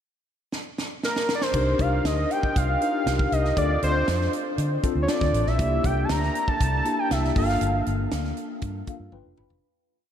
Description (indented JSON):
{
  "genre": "polished 1980s jazz-funk pop",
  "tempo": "119 BPM",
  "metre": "4/4",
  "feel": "straight",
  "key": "unclear",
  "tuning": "A4 = 440 Hz",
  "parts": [
    { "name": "tight funk drum kit", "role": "drums", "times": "0.5-9.6 s", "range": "crash cymbal, hi-hat, kick drum, snare drum, toms", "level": "-29 LUFS", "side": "right 1 dB", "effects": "none" },
    { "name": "fat analog lead", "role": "melody", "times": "1.0-7.8 s", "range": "Bb4 to Bb5", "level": "-26 LUFS", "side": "equal", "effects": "diffuse ambient delay" },
    { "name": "mellow tine electric piano", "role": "accompaniment", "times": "1.5-9.7 s", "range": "Bb3 to B5", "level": "-28 LUFS", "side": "left 3 dB", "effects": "medium stereo tremolo, lush chorus" },
    { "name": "vintage muted fingered electric bass", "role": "bass", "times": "1.5-9.6 s", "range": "F1 to D3", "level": "-26 LUFS", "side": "equal", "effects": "none" }
  ],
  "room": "wet cathedral reverb, RT60 5.5 s",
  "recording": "dreamy mix soaked in reverb",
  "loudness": "-22 LUFS",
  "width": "side -9 dB against mid",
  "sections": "0.0-1.5 pickup bar; 1.5-9.6 verse",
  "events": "drum fill 0.5-1.5, 9.1-9.6; fade-out 7.6-9.6; tine electric piano fill 8.6-9.6",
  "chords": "0.0 N.C.; 1.5 Cm7; 3.6 Dm7; 5.6 C7; 7.4 Gm9; 9.1 G7b13"
}